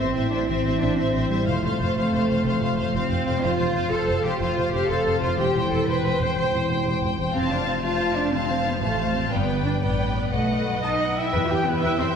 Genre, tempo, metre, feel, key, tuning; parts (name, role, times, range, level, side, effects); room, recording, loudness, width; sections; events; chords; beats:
cinematic; 122 BPM (dotted quarters); 12/8; straight; A4 = 439 Hz
warm symphonic violin section; melody; 0.0-12.1 s; B4 to A5; -31 LUFS; left 4 dB
warm symphonic violin section; second line; 0.0-12.2 s; C5 to G5; -30 LUFS; right 1 dB
rich symphonic viola section; accompaniment; 0.0-12.1 s; E4 to C5; -31 LUFS; left 1 dB
concert harp; arpeggios; 0.0-12.2 s; E2 to A5; -28 LUFS; left 3 dB
rich symphonic cello section; bass; 0.0-12.1 s; G3 to C5; -26 LUFS; right 1 dB
rich symphonic double bass section; bass; 0.0-12.1 s; E1 to E2; -28 LUFS; right 1 dB
warm oboe; second line; 10.8-12.1 s; B4 to G5; -30 LUFS; right 2 dB
clear trumpet; stabs; 10.8-12.2 s; B4 to G5; -28 LUFS; right 1 dB
mellow French horn section; sustained chords; 11.3-12.2 s; G4 to B4; -32 LUFS; equal
wet scoring stage reverb, RT60 1.7 s; heard from further back in the room; -21 LUFS; side -7 dB against mid
0.0-11.3 A section
0.0 Am; 1.5 F; 5.4 C/E; 7.4 F; 9.3 G; 10.3 B7; 11.3 Em
0.48 0.98 | 1.47 1.96 2.45 2.94 | 3.43 3.92 4.41 4.90 | 5.39 5.88 6.37 6.86 | 7.35 7.84 8.34 8.83 | 9.32 9.82 10.33 10.84 | 11.34 11.84